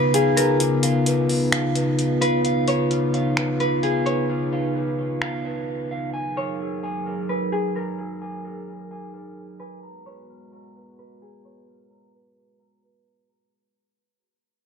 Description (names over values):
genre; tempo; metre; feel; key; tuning
hip hop, atmospheric cloud-rap; 130 BPM; 4/4; half-time; unclear; A4 = 435 Hz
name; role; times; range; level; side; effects
concert harp; melody; 0.0-13.5 s; G#4 to C#5; -26 LUFS; left 2 dB; tape echo
dark analog pad; sustained chords; 0.0-13.5 s; C#3 to A#5; -24 LUFS; left 1 dB; chorus
electric guitar at the edge of break-up; arpeggios; 0.0-13.5 s; E#4 to A#5; -30 LUFS; right 3 dB; tape echo
booming analog drum machine; drums; 0.1-5.3 s; finger snaps, hi-hat; -28 LUFS; equal; none
room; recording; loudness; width
light reverb; low-pass filter; -20 LUFS; side -6 dB against mid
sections
0.0-13.5 A section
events
break 0.0-6.1; fade-out 0.0-13.5; filter sweep 0.0-13.5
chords
0.0 C#9; 6.1 F#69; 9.8 G#m9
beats
0.14 | 0.60 1.06 1.52 1.99 | 2.45 2.91 3.37 3.83 | 4.29 4.75 5.22 5.68 | 6.14 6.60 7.06 7.52 | 7.99 8.45 8.91 9.37 | 9.83 10.29 10.76 11.22 | 11.68 12.14 12.60 13.06